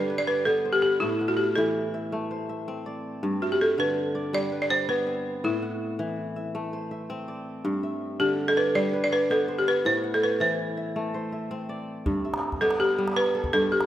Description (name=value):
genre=west african traditional, West African string and xylophone music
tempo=109 BPM (dotted quarters)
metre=12/8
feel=straight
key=G major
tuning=A4 = 439 Hz
part: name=balafon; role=melody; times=0.0-13.9 s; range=E4 to D5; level=-24 LUFS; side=equal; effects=none
part: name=kora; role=arpeggios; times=0.0-13.9 s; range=G2 to F#5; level=-29 LUFS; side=equal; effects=none
part: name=calabash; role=percussion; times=12.1-13.9 s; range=none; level=-32 LUFS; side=right 1 dB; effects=none
room=wet lush hall reverb, RT60 2.7 s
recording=rough home demo mix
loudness=-24 LUFS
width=side -12 dB against mid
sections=0.0-12.1 A section; 12.1-13.9 B section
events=none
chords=0.0 G; 1.0 Am; 3.2 G; 5.4 Am; 7.6 G; 9.9 Am; 12.1 G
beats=0.47 | 1.02 1.57 2.12 2.67 | 3.23 3.78 4.33 4.88 | 5.43 5.99 6.54 7.09 | 7.64 8.20 8.75 9.30 | 9.86 10.41 10.96 11.51 | 12.06 12.62 13.17 13.72